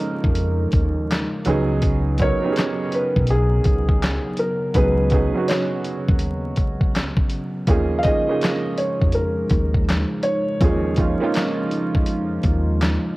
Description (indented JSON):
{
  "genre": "lo-fi hip hop",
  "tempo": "82 BPM",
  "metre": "4/4",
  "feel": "swing 63% on 16ths",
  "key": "Eb minor",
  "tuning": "A4 = 438 Hz",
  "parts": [
    { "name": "warm upright piano", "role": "accompaniment", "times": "0.0-13.2 s", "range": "F3 to Bb4", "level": "-25 LUFS", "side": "right 3 dB", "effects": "cassette tape" },
    { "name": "dark analog pad", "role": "sustained chords", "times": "0.0-13.2 s", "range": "Db3 to Eb4", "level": "-28 LUFS", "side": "equal", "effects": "chorus" },
    { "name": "dusty soul sampler-style drum kit", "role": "drums", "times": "0.0-13.0 s", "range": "handclaps, hi-hat, kick drum, snare drum", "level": "-21 LUFS", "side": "equal", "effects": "cassette tape" },
    { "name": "upright bass", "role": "bass", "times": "0.2-13.0 s", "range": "Cb2 to F2", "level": "-22 LUFS", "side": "equal", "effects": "none" },
    { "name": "felt-muted upright piano", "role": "melody", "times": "2.2-12.4 s", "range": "Ab4 to F5", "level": "-25 LUFS", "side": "equal", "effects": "cassette tape" }
  ],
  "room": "light reverb, studio ambience",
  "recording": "home recording on cassette, vinyl crackle",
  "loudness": "-18 LUFS",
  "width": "side -20 dB against mid",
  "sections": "0.0-13.2 A section",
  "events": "none",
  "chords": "0.0 Eb9sus4; 1.5 Db9sus4; 7.7 Eb9sus4"
}